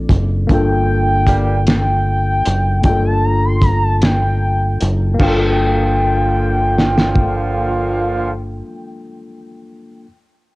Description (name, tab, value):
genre	slow six-eight R&B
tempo	51 BPM (dotted quarters)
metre	6/8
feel	straight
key	G minor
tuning	A4 = 440 Hz
part	tine electric piano	accompaniment	0.0-10.1 s	A3 to A4	-22 LUFS	left 3 dB	plate reverb
part	deep dub fingered electric bass	bass	0.0-8.6 s	F#1 to G1	-17 LUFS	equal	none
part	cloth-damped thuddy drum kit	drums	0.1-7.3 s	crash cymbal, hi-hat, kick drum, snare drum	-16 LUFS	equal	cassette tape
part	gliding portamento lead	melody	0.5-8.3 s	G5 to C6	-20 LUFS	equal	chorus, cassette tape, plate reverb
part	mellow horn section	stabs	1.3-1.6, 5.2-8.3 s	D3 to G4	-22 LUFS	right 2 dB	plate reverb
room	light reverb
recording	home recording on cassette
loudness	-13 LUFS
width	side -21 dB against mid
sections	0.0-5.2 A section; 5.2-7.5 B section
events	none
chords	0.5 Gm9